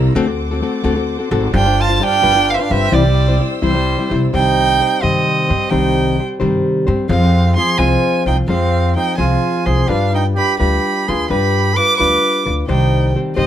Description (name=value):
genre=mexican folk, mariachi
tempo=86 BPM (dotted quarters)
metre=6/8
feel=rubato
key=C major, C harmonic minor from 4.3 s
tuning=A4 = 439 Hz
part: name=nylon-string guitar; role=accompaniment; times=0.0-13.5 s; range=C3 to C5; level=-18 LUFS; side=left 3 dB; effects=none
part: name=rich symphonic violin section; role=sustained chords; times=0.0-4.3 s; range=B4 to F6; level=-29 LUFS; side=equal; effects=none
part: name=upright bass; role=bass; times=0.0-13.5 s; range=G1 to G2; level=-17 LUFS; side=equal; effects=none
part: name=rich violin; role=melody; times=1.6-13.5 s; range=C5 to D6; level=-17 LUFS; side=right 4 dB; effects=plate reverb
part: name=mellow trumpet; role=second line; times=1.6-13.5 s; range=G3 to B4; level=-22 LUFS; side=right 5 dB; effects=none
room=light reverb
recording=none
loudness=-13 LUFS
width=side -10 dB against mid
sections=0.0-4.3 A section; 4.3-13.5 B section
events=none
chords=0.1 D7; 1.5 G7sus4; 2.2 G7; 2.9 C; 4.3 Cm; 7.1 Fm; 9.9 G7; 12.7 Cm